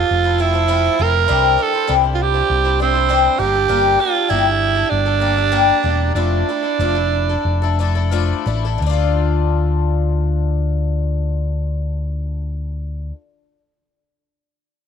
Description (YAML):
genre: folk rock and heartland rock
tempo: 85-100 BPM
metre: 4/4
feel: straight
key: D minor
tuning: A4 = 440 Hz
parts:
  - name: raspy tenor saxophone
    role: melody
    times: 0.0-8.1 s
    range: C4 to Bb4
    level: -17 LUFS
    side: right 9 dB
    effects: none
  - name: picked twelve-string acoustic guitar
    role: accompaniment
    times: 0.0-13.2 s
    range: C3 to C5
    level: -21 LUFS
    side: left 13 dB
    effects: none
  - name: picked electric bass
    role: bass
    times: 0.0-13.1 s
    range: E1 to D2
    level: -19 LUFS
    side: left 1 dB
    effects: none
room: light reverb, small room ambience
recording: 1960s-style stereo with parts hard left and right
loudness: -15 LUFS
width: side -7 dB against mid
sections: 0.0-8.8 A section; 8.8-11.7 B section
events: slowing down 3.7-8.8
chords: 0.0 Fmaj7; 1.3 Cadd9; 3.4 Gmadd9; 6.2 Dmadd9/F; 8.8 Dm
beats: 0.11 0.71 | 1.30 1.90 2.50 3.10 | 3.70 4.30 4.91 5.52 | 6.15 6.79 7.45 8.12 | 8.81 9.52 10.23 10.94